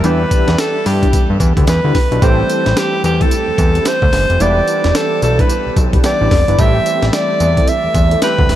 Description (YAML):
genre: R&B, new jack swing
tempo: 110 BPM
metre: 4/4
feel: swing 61% on 16ths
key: A minor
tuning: A4 = 440 Hz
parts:
  - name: bright alto saxophone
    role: melody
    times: 0.0-8.6 s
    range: G4 to E5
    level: -16 LUFS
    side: equal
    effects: analog delay
  - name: warm analog keys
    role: accompaniment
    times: 0.0-8.6 s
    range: E3 to G4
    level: -21 LUFS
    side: right 2 dB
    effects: chorus
  - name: mellow synth brass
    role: stabs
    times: 0.0-8.3 s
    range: C4 to B4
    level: -23 LUFS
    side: equal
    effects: chorus
  - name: fat analog bass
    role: bass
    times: 0.0-8.6 s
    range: E1 to G2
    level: -15 LUFS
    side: equal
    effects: none
  - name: breakbeat sampler-style drum kit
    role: drums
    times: 0.0-8.6 s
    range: hi-hat, kick drum, snare drum, tambourine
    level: -16 LUFS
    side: equal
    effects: none
room: moderate huge ambient reverb, RT60 9.3 s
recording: dreamy mix soaked in reverb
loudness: -11 LUFS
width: side -12 dB against mid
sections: 0.0-8.6 A section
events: none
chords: 0.0 Em7; 2.2 Am7; 4.4 Em7; 6.6 Am7